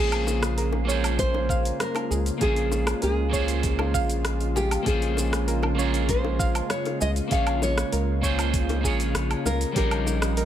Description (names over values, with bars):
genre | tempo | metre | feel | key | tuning
sunset chillout | 98 BPM | 4/4 | straight | Bb dorian | A4 = 440 Hz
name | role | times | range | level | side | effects
nylon-string guitar | melody | 0.0-10.4 s | G4 to F5 | -30 LUFS | equal | vintage 12-bit sampler grit, ping-pong delay
electric guitar at the edge of break-up | accompaniment | 0.0-10.4 s | G3 to Db5 | -30 LUFS | moving between left 8 dB and right 10 dB | auto-pan, digital delay
lush unison pad | sustained chords | 0.0-10.4 s | Db3 to F4 | -32 LUFS | left 1 dB | chorus
soft round pluck | arpeggios | 0.0-10.4 s | G4 to F5 | -34 LUFS | right 4 dB | chorus, digital delay
round analog bass | bass | 0.0-10.4 s | Bb1 to Db2 | -26 LUFS | equal | none
deep house drum kit | drums | 0.1-10.4 s | hi-hat, rim click, shaker, woodblock | -31 LUFS | equal | studio reverb
bongos | percussion | 0.3-10.2 s | none | -34 LUFS | left 7 dB | none
electronic kick drum | drums | 1.2-9.9 s | none | -28 LUFS | equal | studio reverb
room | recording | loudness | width
light reverb | none | -22 LUFS | side -10 dB against mid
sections
0.0-10.4 A section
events
none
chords
0.0 Bbm7; 9.8 Eb7/Bb